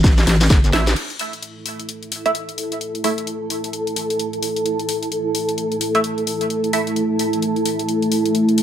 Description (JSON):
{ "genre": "bass house", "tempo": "130 BPM", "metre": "4/4", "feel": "swing 60% on 16ths", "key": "unclear", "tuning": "A4 = 440 Hz", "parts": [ { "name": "wobble bass", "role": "bass", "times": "0.0-0.9 s", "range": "G1 to A1", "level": "-16 LUFS", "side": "equal", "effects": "chorus, tube saturation, sidechain pumping" }, { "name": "electronic kick drum", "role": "drums", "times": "0.0-0.6 s", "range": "none", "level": "-13 LUFS", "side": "equal", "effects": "overdrive" }, { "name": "house drum kit", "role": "drums", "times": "0.0-8.6 s", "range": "crash cymbal, hi-hat, snare drum", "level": "-25 LUFS", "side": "left 2 dB", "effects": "overdrive" }, { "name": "soft brush drum kit", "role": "drums", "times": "0.0-0.9 s", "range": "hi-hat, snare drum", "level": "-30 LUFS", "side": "right 1 dB", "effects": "none" }, { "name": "shekere", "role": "percussion", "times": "0.0-0.9 s", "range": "none", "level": "-27 LUFS", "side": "left 3 dB", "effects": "none" }, { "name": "band-passed chord stab", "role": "stabs", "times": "0.7-3.1, 5.9-6.8 s", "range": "A3 to E5", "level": "-24 LUFS", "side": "right 3 dB", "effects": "phaser, wide subtle chorus, sidechain pumping, digital delay" }, { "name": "dark analog pad", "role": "sustained chords", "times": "1.0-8.6 s", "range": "A3 to A4", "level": "-22 LUFS", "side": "right 1 dB", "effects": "chorus, sidechain pumping" }, { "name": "granular cloud pad", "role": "texture", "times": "1.7-8.6 s", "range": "E4 to A5", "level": "-25 LUFS", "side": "left 1 dB", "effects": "built-in reverb, sidechain pumping" } ], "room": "light reverb, small room ambience", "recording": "none", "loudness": "-18 LUFS", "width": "side -10 dB against mid", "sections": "1.0-8.6 A section", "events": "drum fill 0.0-1.0; band accent 0.8", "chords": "0.0 A5", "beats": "0.04 0.50 | 0.96 1.43 1.89 2.35 | 2.81 3.27 3.73 4.19 | 4.66 5.12 5.58 6.04 | 6.50 6.96 7.42 7.89 | 8.35" }